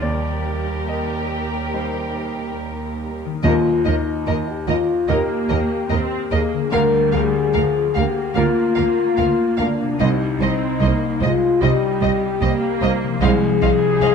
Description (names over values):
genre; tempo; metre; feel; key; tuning
cinematic, emotional film score for orchestra; 73 BPM; 4/4; rubato; Eb major; A4 = 440 Hz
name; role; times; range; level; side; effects
muted studio violin section; melody; 0.0-14.1 s; Bb4 to F5; -29 LUFS; left 2 dB; none
muted studio violin section; second line; 0.0-14.1 s; G4 to Eb5; -29 LUFS; left 1 dB; none
bright grand piano; accompaniment; 0.0-14.1 s; C2 to Eb5; -27 LUFS; left 1 dB; none
muted studio viola section; accompaniment; 0.0-14.1 s; F3 to C4; -27 LUFS; right 3 dB; none
concert harp; arpeggios; 0.0-14.1 s; C3 to Eb5; -27 LUFS; left 9 dB; none
muted studio cello section; bass; 0.0-14.1 s; C2 to Eb2; -25 LUFS; right 5 dB; none
dark French horn section; sustained chords; 3.4-14.1 s; D4 to Bb4; -20 LUFS; left 4 dB; none
muted studio double bass section; bass; 3.4-14.1 s; C2 to Eb2; -24 LUFS; right 6 dB; none
timpani; percussion; 3.4-4.6 s; Eb3; -24 LUFS; left 1 dB; none
room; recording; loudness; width
moderate scoring stage reverb, RT60 1.8 s; dark, warm production; -17 LUFS; side -6 dB against mid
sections
0.0-3.4 A section; 3.4-14.1 A section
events
none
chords
0.0 Eb6; 3.4 Eb; 6.7 Bb/D; 10.0 Cm; 13.2 Ab6/C